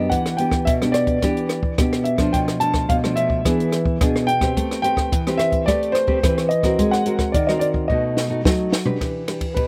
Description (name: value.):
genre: samba and choro.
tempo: 108 BPM.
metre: 4/4.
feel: straight.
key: unclear.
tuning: A4 = 442 Hz.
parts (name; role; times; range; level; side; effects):
dark grand piano; melody; 0.0-9.7 s; B4 to A5; -25 LUFS; equal; none.
nylon-string guitar; accompaniment; 0.0-9.7 s; B2 to B4; -23 LUFS; equal; slapback echo.
compact cocktail drum kit; drums; 0.1-9.7 s; hi-hat, kick drum, ride cymbal, rim click, snare drum, toms; -24 LUFS; equal; none.
room: little or no reverb.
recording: recorded outdoors, with no room sound.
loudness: -20 LUFS.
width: mono.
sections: 0.0-9.0 A section.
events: drum fill 7.9-9.0.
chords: 0.1 Em7; 2.3 Bm7b5; 3.5 E7; 4.6 Am9; 6.8 Ab9; 7.9 B7; 9.0 Em7.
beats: | 0.12 0.67 1.23 1.78 | 2.34 2.90 3.45 4.01 | 4.56 5.12 5.68 6.23 | 6.79 7.34 7.90 8.46 | 9.01 9.57.